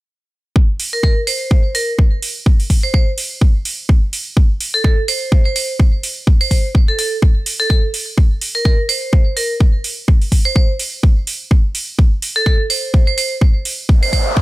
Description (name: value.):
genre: bass house.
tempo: 126 BPM.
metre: 4/4.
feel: swing 57% on 16ths.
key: unclear.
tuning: A4 = 441 Hz.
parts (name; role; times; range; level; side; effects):
electronic kick drum; drums; 0.6-14.4 s; none; -12 LUFS; equal; none.
electronic hi-hat; drums; 0.8-14.2 s; none; -22 LUFS; right 2 dB; none.
vibraphone with hard mallets; melody; 0.9-14.2 s; A4 to C5; -19 LUFS; right 2 dB; digital delay.
noise sweep; sound effects; 14.0-14.4 s; none; -21 LUFS; right 1 dB; none.
room: little or no reverb.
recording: none.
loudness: -13 LUFS.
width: side -19 dB against mid.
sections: 0.6-14.4 A section.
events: noise sweep 14.0-14.4.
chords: none.